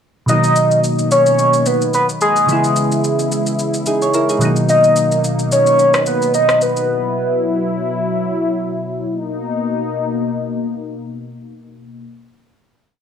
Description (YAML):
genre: amapiano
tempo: 109 BPM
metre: 4/4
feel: swing 55% on 16ths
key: B major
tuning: A4 = 440 Hz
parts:
  - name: warm velvety synth lead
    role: melody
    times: 0.3-7.7 s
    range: G#4 to D#5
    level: -14 LUFS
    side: equal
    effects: chorus, tremolo, tape echo
  - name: soft electric-piano-like synth keys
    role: accompaniment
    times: 0.3-6.9 s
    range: B2 to C#5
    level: -18 LUFS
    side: equal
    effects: chorus
  - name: warm analog pad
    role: sustained chords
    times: 0.3-12.1 s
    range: B2 to E4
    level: -21 LUFS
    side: left 2 dB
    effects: chorus
  - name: electronic shaker and rim click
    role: drums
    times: 0.3-6.9 s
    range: none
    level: -24 LUFS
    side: left 1 dB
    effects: overdrive, vintage 12-bit sampler grit
room: light reverb, digital ambience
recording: dry, gritty hardware recording, small room ambience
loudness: -14 LUFS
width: side -8 dB against mid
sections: 0.3-9.1 breakdown; 9.1-11.3 final chord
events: none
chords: 0.3 Bmaj7; 2.5 E6; 4.4 Bmaj7; 6.9 F#7sus4; 9.1 Bmaj7